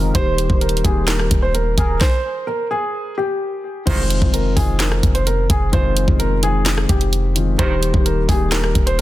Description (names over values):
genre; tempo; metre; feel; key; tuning
hip hop, trap; 129 BPM; 4/4; half-time; unclear; A4 = 440 Hz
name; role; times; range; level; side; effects
dark baby grand piano; melody; 0.0-9.0 s; G4 to C5; -22 LUFS; right 1 dB; tape echo
warm velvety synth lead; second line; 0.0-2.0 s; Bb4 to C5; -29 LUFS; right 6 dB; chorus, tape echo
felt-muted upright piano; accompaniment; 0.0-9.0 s; Eb3 to G4; -23 LUFS; left 5 dB; none
clean 808-style bass; bass; 0.0-9.0 s; Eb1 to F1; -19 LUFS; equal; none
trap drum kit; drums; 0.1-9.0 s; crash cymbal, handclaps, hi-hat, kick drum, rim click, snare drum; -18 LUFS; equal; none
warm brass ensemble; stabs; 3.9-4.0, 7.6-7.7 s; Bb1 to Eb3; -30 LUFS; right 5 dB; none
room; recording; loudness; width
studio reverb; dense, heavily limited modern master; -15 LUFS; side -15 dB against mid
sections
0.0-3.9 A section; 3.9-9.0 B section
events
stop 2.0-3.9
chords
0.1 Eb; 2.0 N.C.; 3.9 Fm7; 7.6 Eb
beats
| 0.15 0.61 1.08 1.54 | 2.01 2.47 2.94 3.40 | 3.87 4.33 4.80 5.26 | 5.73 6.20 6.66 7.12 | 7.59 8.06 8.52 8.99